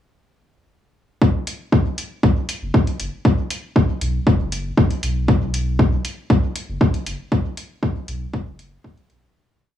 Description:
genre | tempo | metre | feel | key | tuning
dub techno | 118 BPM | 4/4 | straight | unclear | A4 = 440 Hz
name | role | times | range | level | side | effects
electronic kick drum | drums | 1.2-8.9 s | none | -17 LUFS | equal | overdrive
electronic hi-hat | drums | 1.5-9.2 s | none | -30 LUFS | equal | overdrive
soft dub sub bass | bass | 2.2-9.3 s | F#1 to B1 | -24 LUFS | equal | transformer saturation, sidechain pumping
room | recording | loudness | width
little or no reverb | dry, gritty hardware recording, cassette tape | -18 LUFS | side -10 dB against mid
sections
1.2-9.4 groove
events
fade-out 6.6-9.4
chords
none

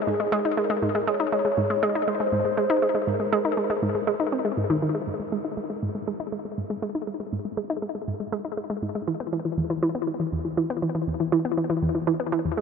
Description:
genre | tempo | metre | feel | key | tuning
ambient | 120 BPM | 4/4 | straight | G# minor from 5.1 s | A4 = 440 Hz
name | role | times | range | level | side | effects
expressive synth lead | melody | 0.1-4.6 s | Ab4 to Eb5 | -28 LUFS | equal | analog chorus, ping-pong delay
analog pluck | riff | 0.1-12.6 s | E2 to Eb4 | -24 LUFS | equal | chorus, ping-pong delay
room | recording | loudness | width
wet huge ambient reverb, RT60 7.6 s | none | -23 LUFS | side -6 dB against mid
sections
0.0-5.1 A section; 5.1-12.6 B section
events
none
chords
0.0 Absus2; 5.1 G#5; 9.1 E5

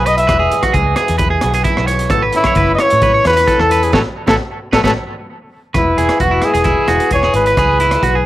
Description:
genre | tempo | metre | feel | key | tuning
highlife guitar band | 132 BPM | 4/4 | straight | E major | A4 = 440 Hz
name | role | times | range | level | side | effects
warm trumpet | melody | 0.0-8.2 s | E4 to E5 | -14 LUFS | equal | analog delay
picked old ladder-braced acoustic guitar | accompaniment | 0.0-8.3 s | E2 to G#4 | -22 LUFS | left 7 dB | none
electric guitar at the edge of break-up | arpeggios | 0.0-8.3 s | E4 to C#5 | -17 LUFS | right 4 dB | analog delay
vintage muted fingered electric bass | bass | 0.0-8.2 s | E1 to A2 | -19 LUFS | equal | none
crunchy breakbeat drum kit | drums | 0.1-8.1 s | hi-hat, kick drum, rim click, snare drum | -19 LUFS | equal | none
room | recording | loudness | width
light reverb | none | -11 LUFS | side -15 dB against mid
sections
0.0-5.8 A section; 5.8-8.3 B section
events
band accent 3.9-5.8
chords
0.0 E; 2.1 Aadd9; 5.8 E

